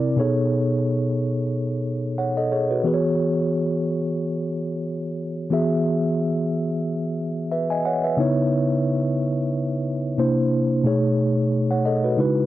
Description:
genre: R&B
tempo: 90 BPM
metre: 4/4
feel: swing 56% on 16ths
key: unclear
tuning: A4 = 439 Hz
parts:
  - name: mellow tine electric piano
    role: solo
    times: 0.0-12.5 s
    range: B2 to G#5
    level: -20 LUFS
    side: equal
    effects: medium stereo tremolo
room: light reverb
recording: dry, close 1970s-style studio recording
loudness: -20 LUFS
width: side -14 dB against mid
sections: 0.0-12.5 A section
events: none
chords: 0.2 B13; 2.8 E69; 8.2 C#m9; 10.2 C9; 10.8 B13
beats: | 0.18 0.84 1.51 2.18 | 2.85 3.51 4.18 4.84 | 5.51 6.18 6.84 7.51 | 8.18 8.85 9.51 10.18 | 10.85 11.51 12.18

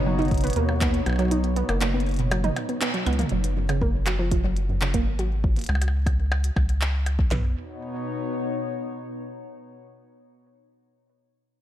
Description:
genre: IDM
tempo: 120 BPM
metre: 4/4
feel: straight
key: B major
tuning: A4 = 440 Hz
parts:
  - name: warbly tape-like pad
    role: sustained chords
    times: 0.0-3.3, 7.5-9.3 s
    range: B2 to C#5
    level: -31 LUFS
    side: left 2 dB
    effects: chorus, built-in reverb
  - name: warbly dusty pluck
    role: arpeggios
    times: 0.0-7.5 s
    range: F#2 to D#4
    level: -28 LUFS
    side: right 3 dB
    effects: chorus, tape echo
  - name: rubbery square bass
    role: bass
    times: 0.0-7.5 s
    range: F#1 to D#2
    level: -24 LUFS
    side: equal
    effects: none
  - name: glitchy drum kit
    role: drums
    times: 0.2-7.2 s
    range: handclaps, hi-hat, percussion blips, toms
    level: -31 LUFS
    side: equal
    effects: ping-pong delay
  - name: glitchy drum kit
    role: drums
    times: 0.3-7.4 s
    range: handclaps, kick drum, snare drum, toms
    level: -25 LUFS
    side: equal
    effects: none
room: light reverb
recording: dark, warm production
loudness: -22 LUFS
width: side -12 dB against mid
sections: 0.0-3.3 A section; 3.3-7.3 B section; 7.3-9.3 C section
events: kick drops out 1.3-3.3; band accent 2.8; drum fill 3.1; filter sweep on analog synth bass 3.3-7.3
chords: 0.0 Badd9; 3.3 F#5; 7.3 Badd9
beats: 0.31 0.81 | 1.31 1.81 2.31 2.81 | 3.31 3.81 4.31 4.81 | 5.31 5.81 6.31 6.81 | 7.31 7.81 8.31 8.81

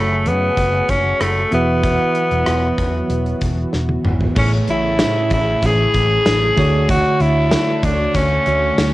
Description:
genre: 1980s-style pop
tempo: 95 BPM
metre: 4/4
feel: straight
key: A major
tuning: A4 = 440 Hz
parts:
  - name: raspy tenor saxophone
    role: melody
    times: 0.0-8.9 s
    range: A3 to G#4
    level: -18 LUFS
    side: equal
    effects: cassette tape
  - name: bell-like tine electric piano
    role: accompaniment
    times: 0.0-8.9 s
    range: A2 to E5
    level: -21 LUFS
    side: right 1 dB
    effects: fast stereo tremolo, cassette tape
  - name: phased analog pad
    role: sustained chords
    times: 0.0-8.9 s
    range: C#3 to C#5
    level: -28 LUFS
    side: equal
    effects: phaser, chorus, cassette tape
  - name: vintage muted fingered electric bass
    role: bass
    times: 0.0-8.9 s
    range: E1 to F#2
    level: -21 LUFS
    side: equal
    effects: none
  - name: gated 80s drum kit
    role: drums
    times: 0.3-8.9 s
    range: crash cymbal, hi-hat, kick drum, rim click, snare drum, tambourine, toms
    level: -21 LUFS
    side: equal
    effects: cassette tape
  - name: tight distorted guitar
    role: accompaniment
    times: 4.4-8.9 s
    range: A2 to D4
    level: -31 LUFS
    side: equal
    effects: distortion, wide subtle chorus, cassette tape
room: moderate studio reverb, RT60 0.5 s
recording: home recording on cassette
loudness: -14 LUFS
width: side -17 dB against mid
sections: 0.0-4.4 A section; 4.4-8.9 B section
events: drum fill 3.7-4.4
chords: 0.0 F#madd9; 1.5 Esus2; 4.4 Amaj7; 6.6 Dmaj7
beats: 0.57 1.20 | 1.84 2.47 3.10 3.73 | 4.36 4.99 5.63 6.26 | 6.89 7.52 8.15 8.78

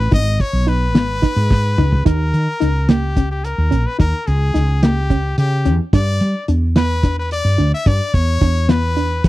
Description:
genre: progressive instrumental, band music in an uneven meter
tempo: 217 BPM (eighths)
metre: 7/8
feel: straight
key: unclear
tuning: A4 = 438 Hz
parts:
  - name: brilliant trumpet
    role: melody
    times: 0.0-9.3 s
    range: G4 to E5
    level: -22 LUFS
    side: left 3 dB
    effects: none
  - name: woody fretless electric bass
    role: bass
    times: 0.0-9.3 s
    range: G#1 to G3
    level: -16 LUFS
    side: equal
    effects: none
  - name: soft round pluck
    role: arpeggios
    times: 0.1-9.3 s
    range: A#3 to D#4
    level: -21 LUFS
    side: equal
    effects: chorus
  - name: cloth-damped thuddy drum kit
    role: drums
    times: 0.1-9.3 s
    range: hi-hat, kick drum, snare drum, toms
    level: -16 LUFS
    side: equal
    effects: none
room: small room ambience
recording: dry, close 1970s-style studio recording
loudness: -14 LUFS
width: side -17 dB against mid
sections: 0.0-2.1 A section; 2.1-9.3 B section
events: trumpet solo 0.0-2.1; drum fill 1.5-2.1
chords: 0.1 G#m; 2.1 D#; 5.9 G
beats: | 0.12 0.40 0.67 0.95 1.22 1.50 1.78 | 2.05 2.33 2.61 2.88 3.16 3.44 3.71 | 3.99 4.26 4.54 4.82 5.09 5.37 5.65 | 5.92 6.20 6.48 6.75 7.03 7.31 7.58 | 7.86 8.14 8.41 8.69 8.97 9.24

